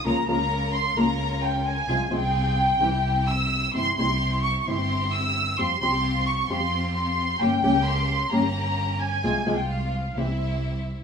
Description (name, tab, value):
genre	tango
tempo	131 BPM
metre	4/4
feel	rubato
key	F harmonic minor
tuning	A4 = 440 Hz
part	dark studio violin section	second line	0.0-10.9 s	E5 to E6	-25 LUFS	equal	none
part	clear studio string section	stabs	0.0-11.0 s	G3 to Bb4	-32 LUFS	left 2 dB	none
part	nylon-string guitar	accompaniment	0.1-10.3 s	C3 to Bb4	-26 LUFS	left 1 dB	none
part	dark double bass	bass	0.1-11.0 s	G1 to F2	-28 LUFS	right 1 dB	none
room	moderate studio reverb, RT60 0.7 s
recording	minimal, uncompressed stereo recording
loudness	-22 LUFS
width	side -6 dB against mid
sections	0.0-11.0 A section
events	violin section solo 0.0-11.0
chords	0.1 Bbm/Db; 1.9 Fm/C; 2.8 C; 5.6 Fsus2; 7.4 Gdim; 9.2 Fm/C; 10.2 C